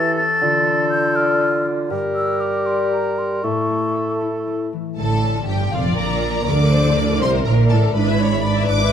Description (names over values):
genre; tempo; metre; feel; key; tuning
classical, dramatic, fast romantic movement for symphony orchestra; 80 BPM (dotted quarters); 6/8; rubato; D minor; A4 = 440 Hz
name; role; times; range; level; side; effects
clear clarinet; second line; 0.0-4.7 s; E4 to G4; -26 LUFS; left 1 dB; none
mellow cor anglais; second line; 0.0-4.7 s; A4 to Bb4; -27 LUFS; right 2 dB; none
mellow hollow concert flute; second line; 0.0-4.2 s; Bb5 to A6; -21 LUFS; left 1 dB; none
mellow bassoon; accompaniment; 0.0-4.7 s; D3 to A3; -22 LUFS; right 1 dB; none
concert harp; arpeggios; 0.0-8.9 s; G2 to B5; -26 LUFS; left 11 dB; none
warm symphonic violin section; melody; 5.0-8.9 s; F5 to D6; -26 LUFS; equal; none
warm symphonic violin section; second line; 5.0-8.9 s; D4 to E5; -24 LUFS; left 2 dB; none
rich symphonic cello section; bass; 5.0-8.9 s; F2 to D3; -20 LUFS; right 2 dB; none
warm symphonic double bass section; bass; 5.0-8.9 s; F1 to D2; -21 LUFS; right 4 dB; none
warm symphonic viola section; accompaniment; 5.7-8.9 s; Bb4 to D5; -25 LUFS; left 1 dB; none
room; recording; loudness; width
light reverb; none; -16 LUFS; side -8 dB against mid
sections
0.0-5.0 A section; 5.0-8.9 B section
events
none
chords
0.4 Dm; 1.9 Gm; 3.4 A; 5.0 Dm/A; 5.7 Bb/F; 6.5 Em7b5/D; 8.0 E7/G#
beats
| 0.41 1.16 | 1.90 2.66 | 3.43 4.21 | 4.98 5.73 | 6.47 7.22 | 7.95 8.69